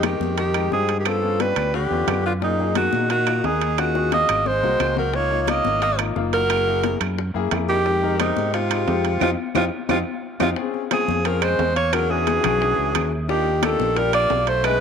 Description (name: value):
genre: Afro-Cuban jazz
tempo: 177 BPM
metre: 4/4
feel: straight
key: F minor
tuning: A4 = 439 Hz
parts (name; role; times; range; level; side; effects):
- clear alto saxophone; melody; 0.0-14.8 s; Eb4 to Eb5; -22 LUFS; right 4 dB; none
- bright tenor saxophone; second line; 0.0-14.8 s; Bb2 to Bb3; -28 LUFS; left 11 dB; none
- warm grand piano; accompaniment; 0.0-14.8 s; Ab3 to Bb4; -27 LUFS; left 12 dB; none
- fingered electric bass; bass; 0.0-14.8 s; Gb1 to Bb2; -26 LUFS; right 1 dB; none
- bongos; percussion; 0.0-14.8 s; none; -32 LUFS; left 13 dB; none
- claves; percussion; 0.0-14.8 s; none; -33 LUFS; right 15 dB; none
- congas; percussion; 0.0-14.8 s; none; -31 LUFS; left 14 dB; none
- timbales; percussion; 0.0-14.8 s; none; -29 LUFS; right 15 dB; none
room: moderate spring reverb, RT60 2.4 s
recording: 1960s-style stereo with parts hard left and right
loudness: -18 LUFS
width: side -7 dB against mid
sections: 0.0-10.6 A section; 10.6-14.8 B section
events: drum fill 3.8-5.1, 9.2-10.6; band accent 9.2-10.6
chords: 0.0 Fm9; 1.1 G7#11; 2.4 Gb69; 3.8 Ebm11; 4.5 Ab9; 5.1 Db69; 6.5 Gb9; 7.9 Fm9; 10.6 Bbm9; 11.9 E13; 13.3 Ebmaj7